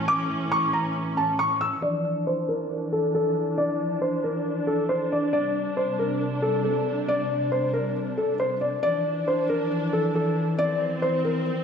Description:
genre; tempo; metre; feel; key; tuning
hip hop; 137 BPM; 4/4; half-time; D minor; A4 = 436 Hz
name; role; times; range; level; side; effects
felt-muted upright piano; melody; 0.0-11.4 s; A4 to E6; -24 LUFS; left 1 dB; low-pass filter, tape echo
dark symphonic string section; sustained chords; 0.0-11.6 s; A2 to D4; -27 LUFS; equal; low-pass filter
room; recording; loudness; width
wet lush hall reverb, RT60 1.8 s; dreamy mix soaked in reverb; -23 LUFS; side -7 dB against mid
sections
0.0-1.8 A section; 1.8-8.8 B section; 8.8-11.6 C section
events
filter sweep 1.8-8.8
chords
0.0 A; 1.8 Dmadd9; 5.3 Csus2; 8.8 Dmadd9

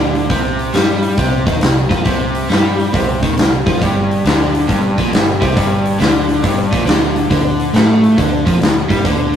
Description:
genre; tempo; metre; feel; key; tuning
blues rock power trio and southern rock; 137 BPM; 4/4; swing 66% on 8ths; unclear; A4 = 440 Hz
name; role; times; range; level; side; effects
overdriven electric guitar; riff; 0.0-9.4 s; G2 to A3; -15 LUFS; equal; none
vintage muted picked electric bass; bass; 0.0-9.4 s; G1 to A2; -21 LUFS; equal; none
big rock drum kit; drums; 0.2-9.4 s; hi-hat, kick drum, snare drum; -15 LUFS; equal; none
room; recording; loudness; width
moderate stone room reverb, RT60 1.2 s; rough rehearsal-room recording, tube saturation; -12 LUFS; side -9 dB against mid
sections
0.0-9.4 A section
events
none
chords
0.3 C5; 3.8 G5; 7.3 D5

